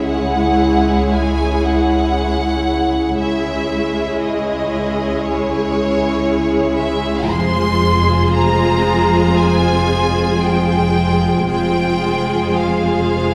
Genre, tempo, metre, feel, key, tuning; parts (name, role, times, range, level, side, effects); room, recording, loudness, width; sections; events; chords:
cinematic, emotional film score for orchestra; 58 BPM; 4/4; rubato; A4 = 440 Hz
rich studio violin section; melody; 0.0-13.3 s; C#5 to C6; -24 LUFS; equal
rich studio violin section; second line; 0.0-13.3 s; G#4 to C#5; -27 LUFS; equal
rich studio viola section; accompaniment; 0.0-13.3 s; G#3 to F4; -20 LUFS; equal
clear symphonic cello section; bass; 0.0-13.3 s; C#2 to F2; -24 LUFS; equal
rich studio double bass section; bass; 0.0-13.3 s; F1 to C#2; -24 LUFS; equal
wet recital hall reverb, RT60 1.5 s; heard from further back in the room; -16 LUFS; mono
0.0-13.3 A section
0.0 C#m; 7.3 Fm